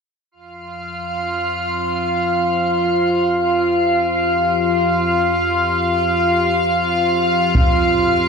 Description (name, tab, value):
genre	dark ambient drone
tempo	free time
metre	none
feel	none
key	unclear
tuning	A4 = 438 Hz
part	sweeping resonant pad	sustained chords	0.3-8.3 s	F3 to C5	-29 LUFS	left 2 dB	chorus, phaser
part	deep rumbling drone	drone	0.7-8.3 s	F2 to F3	-27 LUFS	left 2 dB	built-in reverb
part	icy glass pad	texture	0.6-8.3 s	F4 to F5	-16 LUFS	equal	chorus, built-in reverb
part	solo taiko drums	percussion	7.5-7.8 s	none	-18 LUFS	equal	low-pass filter on perc
room	wet cathedral reverb, RT60 4.8 s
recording	worn, warbling old tape, cassette tape, warbly pitch drift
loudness	-15 LUFS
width	side -5 dB against mid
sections	0.3-8.3 A section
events	fade-in on synth drone 0.3-8.3; fade-in on analog synth pad 0.3-8.3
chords	0.3 F5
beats	free time